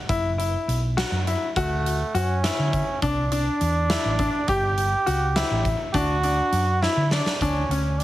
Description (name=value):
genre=progressive instrumental, band music in an uneven meter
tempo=205 BPM (eighths)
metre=5/8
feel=straight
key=D major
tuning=A4 = 438 Hz
part: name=bright grand piano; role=arpeggios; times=0.1-8.0 s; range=C#4 to G4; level=-26 LUFS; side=left 3 dB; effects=tape echo, plate reverb
part: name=hollow-body short-scale fingered electric bass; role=bass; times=0.1-8.0 s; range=F#1 to D3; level=-25 LUFS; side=equal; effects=none
part: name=huge arena drum kit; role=drums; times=0.1-8.0 s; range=hi-hat, kick drum, snare drum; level=-29 LUFS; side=right 1 dB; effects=none
part: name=warm flugelhorn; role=second line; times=1.6-8.0 s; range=A3 to G4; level=-26 LUFS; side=right 2 dB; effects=plate reverb
room=moderate studio reverb, RT60 0.7 s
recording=heavily compressed radio sound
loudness=-21 LUFS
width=side -15 dB against mid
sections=0.0-7.4 A section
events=drum fill 6.8-7.4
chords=0.1 F#7sus4; 1.6 Dmaj7; 3.0 Csus2; 4.5 Gsus2; 5.9 D; 7.4 N.C.